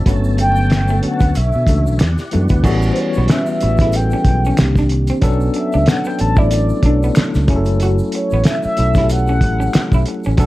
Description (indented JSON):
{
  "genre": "R&B, neo-soul",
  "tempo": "93 BPM",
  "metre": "4/4",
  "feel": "swing 56% on 16ths",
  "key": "unclear",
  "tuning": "A4 = 441 Hz",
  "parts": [
    { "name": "mellow horn-like synth lead", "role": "melody", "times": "0.0-10.0 s", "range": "C5 to A5", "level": "-21 LUFS", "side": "equal", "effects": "chorus" },
    { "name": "tine electric piano", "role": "accompaniment", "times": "0.0-10.5 s", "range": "D3 to A4", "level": "-20 LUFS", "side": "left 1 dB", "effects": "fast stereo tremolo" },
    { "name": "mellow tonewheel organ", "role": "sustained chords", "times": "0.0-2.6 s", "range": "D3 to A5", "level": "-29 LUFS", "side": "equal", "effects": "fast rotary speaker, chorus vibrato" },
    { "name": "electric guitar through a small old amp", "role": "second line", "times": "0.1-10.5 s", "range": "A3 to F#4", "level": "-25 LUFS", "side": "right 2 dB", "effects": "none" },
    { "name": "fingered electric bass", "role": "bass", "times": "0.1-10.5 s", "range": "F#1 to B2", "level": "-16 LUFS", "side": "equal", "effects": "none" },
    { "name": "cloth-damped thuddy drum kit", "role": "drums", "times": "0.1-10.5 s", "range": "crash cymbal, hi-hat, kick drum, snare drum", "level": "-16 LUFS", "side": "equal", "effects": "none" },
    { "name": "egg shaker and finger snaps", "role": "percussion", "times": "0.1-10.5 s", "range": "none", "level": "-35 LUFS", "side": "left 2 dB", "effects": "none" }
  ],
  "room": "light reverb",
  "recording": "vinyl crackle",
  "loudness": "-13 LUFS",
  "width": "side -17 dB against mid",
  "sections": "0.0-2.6 A section; 2.6-10.5 B section",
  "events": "none",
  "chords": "0.1 Gmaj9#11; 1.4 Bm11; 2.0 Em9; 2.6 A13; 4.6 Cm9; 5.2 Bm9; 7.5 F#m7",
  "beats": "| 0.06 0.70 1.35 2.00 | 2.64 3.29 3.93 4.58 | 5.22 5.87 6.51 7.16 | 7.80 8.45 9.09 9.74 | 10.38"
}